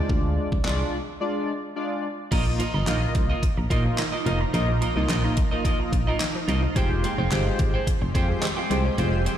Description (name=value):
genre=dance-pop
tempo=108 BPM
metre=4/4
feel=straight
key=unclear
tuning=A4 = 440 Hz
part: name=chorused polysynth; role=accompaniment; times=0.0-9.2 s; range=Ab3 to Eb5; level=-29 LUFS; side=left 1 dB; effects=sidechain pumping
part: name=solid FM bass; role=bass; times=0.1-9.3 s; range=F1 to Bb2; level=-24 LUFS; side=equal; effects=sidechain pumping
part: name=pop drum kit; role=drums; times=0.1-9.4 s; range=crash cymbal, handclaps, hi-hat, kick drum, snare drum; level=-26 LUFS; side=equal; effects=overdrive
part: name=shimmering ambient pad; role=sustained chords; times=3.4-9.4 s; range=F3 to G4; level=-32 LUFS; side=right 1 dB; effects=chorus, built-in reverb, sidechain pumping
part: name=hollow square pluck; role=arpeggios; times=2.3-9.4 s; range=F3 to Bb5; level=-35 LUFS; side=left 1 dB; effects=chorus, phaser, sidechain pumping, ping-pong delay
part: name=electric guitar at the edge of break-up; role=riff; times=2.3-9.4 s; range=F4 to G5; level=-31 LUFS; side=right 3 dB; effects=wide subtle chorus
room=light reverb, digital ambience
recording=played on a big sound system in a bare room, stone room reverb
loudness=-22 LUFS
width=side -10 dB against mid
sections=0.0-2.3 A section; 2.3-9.4 B section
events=break 1.2-2.3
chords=0.0 Ddim; 2.3 Bbsus4; 6.8 Fmadd9